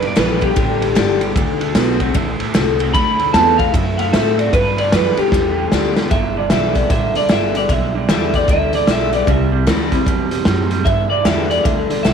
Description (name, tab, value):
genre	rockabilly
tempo	152 BPM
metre	4/4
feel	swing 63% on 8ths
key	G major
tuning	A4 = 440 Hz
part	electric guitar through a small old amp	melody	0.0-12.1 s	G4 to B5	-18 LUFS	right 1 dB	analog chorus, tape echo
part	picked steel-string acoustic guitar	accompaniment	0.0-12.1 s	G2 to G4	-22 LUFS	left 13 dB	none
part	electric guitar through a small old amp	riff	0.0-12.1 s	G2 to B3	-23 LUFS	right 13 dB	none
part	upright bass	bass	0.0-12.1 s	G1 to A2	-22 LUFS	equal	none
part	raw garage drum kit	drums	0.0-12.1 s	hi-hat, kick drum, ride cymbal, snare drum	-18 LUFS	equal	none
room	moderate spring reverb, RT60 2.0 s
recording	1960s-style stereo with parts hard left and right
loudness	-13 LUFS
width	side -7 dB against mid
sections	0.0-6.1 A section; 6.1-12.1 B section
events	clean electric guitar solo 0.0-6.1; drum fill 5.3-6.1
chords	0.0 G; 1.4 D7; 4.5 G; 9.3 C; 10.9 G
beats	0.17 0.57 0.96 | 1.36 1.76 2.15 2.55 | 2.94 3.34 3.74 4.13 | 4.53 4.92 5.32 5.71 | 6.11 6.50 6.90 7.29 | 7.69 8.09 8.48 8.88 | 9.27 9.67 10.06 10.46 | 10.86 11.25 11.65 12.05